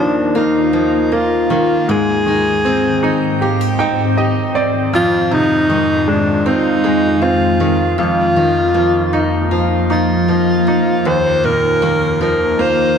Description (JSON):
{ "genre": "pop", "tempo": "78 BPM", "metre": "4/4", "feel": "straight", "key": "Eb major", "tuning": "A4 = 439 Hz", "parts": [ { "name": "breathy alto saxophone", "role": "melody", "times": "0.0-13.0 s", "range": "D4 to C5", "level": "-16 LUFS", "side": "equal", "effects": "analog delay" }, { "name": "bright grand piano", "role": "accompaniment", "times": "0.0-13.0 s", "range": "Eb2 to G5", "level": "-18 LUFS", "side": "right 1 dB", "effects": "none" }, { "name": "ethereal airy pad", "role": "sustained chords", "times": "0.0-13.0 s", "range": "Eb2 to G5", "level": "-19 LUFS", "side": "equal", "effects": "ensemble chorus, built-in reverb, phaser" }, { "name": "picked steel-string acoustic guitar", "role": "arpeggios", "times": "0.0-13.0 s", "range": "F2 to G4", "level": "-22 LUFS", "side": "left 2 dB", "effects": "analog delay" } ], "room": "moderate plate reverb, RT60 2.6 s", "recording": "dreamy mix soaked in reverb", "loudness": "-12 LUFS", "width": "side -7 dB against mid", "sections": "0.0-13.0 A section", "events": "grand piano fill 3.4-4.9", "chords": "0.0 Ebsus2; 1.9 Abmaj7; 4.9 Fm7; 8.0 Bbsus4/F; 11.1 Ebsus2", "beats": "0.35 1.12 | 1.89 2.65 3.42 4.18 | 4.93 5.70 6.46 7.22 | 7.98 8.75 9.51 10.28 | 11.05 11.82 12.59" }